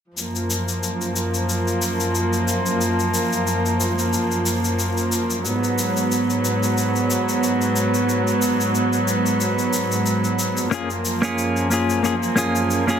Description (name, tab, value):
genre	sunset chillout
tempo	91 BPM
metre	4/4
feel	swing 55% on 16ths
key	unclear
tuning	A4 = 440 Hz
part	dark studio string section	sustained chords	0.2-13.0 s	F#2 to B3	-20 LUFS	right 1 dB	none
part	shaker	drums	0.2-13.0 s	none	-28 LUFS	left 4 dB	overdrive
part	clean electric guitar	accompaniment	10.7-13.0 s	A#3 to G#4	-20 LUFS	moving between left 5 dB and right 3 dB	auto-pan, tape echo
room	moderate plate reverb, RT60 2.0 s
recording	dense, heavily limited modern master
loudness	-18 LUFS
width	side -8 dB against mid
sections	0.2-13.0 A section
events	none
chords	0.2 F#maj7; 5.5 G#m7; 10.7 F#maj7